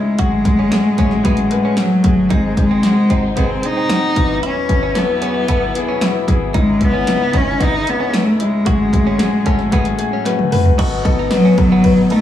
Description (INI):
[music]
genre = piano-driven pop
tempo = 113 BPM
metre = 4/4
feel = straight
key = unclear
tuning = A4 = 440 Hz
[part]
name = rich cello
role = melody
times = 0.0-12.2 s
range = F#3 to D#4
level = -16 LUFS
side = equal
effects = none
[part]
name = clear baby grand piano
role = accompaniment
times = 0.0-12.2 s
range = B1 to B4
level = -21 LUFS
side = left 5 dB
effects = none
[part]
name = warm studio string section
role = sustained chords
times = 0.0-12.2 s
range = A2 to E4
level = -27 LUFS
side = left 1 dB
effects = none
[part]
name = direct-recorded clean electric guitar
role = riff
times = 0.2-12.2 s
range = B3 to F#4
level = -27 LUFS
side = right 7 dB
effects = none
[part]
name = punchy analog drum machine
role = drums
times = 0.2-12.2 s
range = crash cymbal, hi-hat, kick drum, ride cymbal, snare drum, toms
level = -18 LUFS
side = equal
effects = none
[part]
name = mellow French horn section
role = second line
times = 10.8-12.2 s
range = B2 to B3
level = -23 LUFS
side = left 4 dB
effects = none
[sound]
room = moderate large studio reverb, RT60 1.1 s, small room reverb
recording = none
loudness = -13 LUFS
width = side -11 dB against mid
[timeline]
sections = 0.0-10.8 A section; 10.8-12.2 B section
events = drum fill 10.3-10.8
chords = 0.2 F#madd9; 2.3 G#; 4.2 Esus2; 6.5 C#madd9; 8.7 F#madd9; 10.8 B7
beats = | 0.19 0.72 1.25 1.78 | 2.31 2.84 3.37 3.90 | 4.43 4.96 5.49 6.02 | 6.55 7.08 7.61 8.14 | 8.67 9.20 9.73 10.26 | 10.79 11.32 11.85